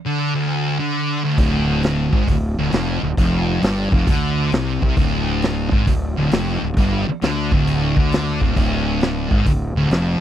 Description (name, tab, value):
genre	blues rock power trio and southern rock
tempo	134 BPM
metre	4/4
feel	swing 67% on 8ths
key	D minor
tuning	A4 = 438 Hz
part	thick fuzz guitar	riff	0.1-10.2 s	D2 to D3	-20 LUFS	equal	distortion
part	fuzz fingered electric bass	bass	1.4-10.2 s	D1 to D2	-22 LUFS	equal	overdrive
part	vintage drum kit	drums	1.4-10.1 s	hi-hat, kick drum, snare drum	-19 LUFS	equal	none
room	little or no reverb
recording	dry, close 1970s-style studio recording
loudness	-16 LUFS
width	side -10 dB against mid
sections	0.0-10.2 A section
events	none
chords	0.0 Dm